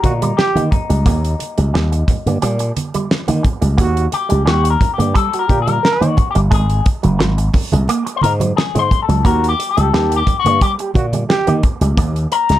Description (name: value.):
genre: funk.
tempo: 88 BPM.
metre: 4/4.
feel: straight.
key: Eb mixolydian.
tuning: A4 = 440 Hz.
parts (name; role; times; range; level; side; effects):
breathy trombone; second line; 0.0-11.6 s; Gb4 to Bb4; -20 LUFS; right 5 dB; none.
electric guitar with an envelope filter; accompaniment; 0.0-12.6 s; Eb4 to C5; -19 LUFS; left 8 dB; wah.
slap bass with an envelope filter; bass; 0.0-12.6 s; Gb1 to Eb3; -16 LUFS; equal; none.
damped 70s drum kit; drums; 0.0-12.6 s; hi-hat, kick drum, snare drum; -17 LUFS; equal; none.
congas; percussion; 0.0-12.1 s; none; -24 LUFS; right 3 dB; none.
electric guitar with an envelope filter; riff; 0.2-12.6 s; Gb3 to Bb3; -23 LUFS; right 5 dB; spring reverb.
room: light reverb.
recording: dark, warm production.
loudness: -13 LUFS.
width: side -13 dB against mid.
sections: 0.0-12.6 A section.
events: clean electric guitar solo 0.0-12.6.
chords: 0.0 Eb; 6.5 Ab7; 9.2 Eb.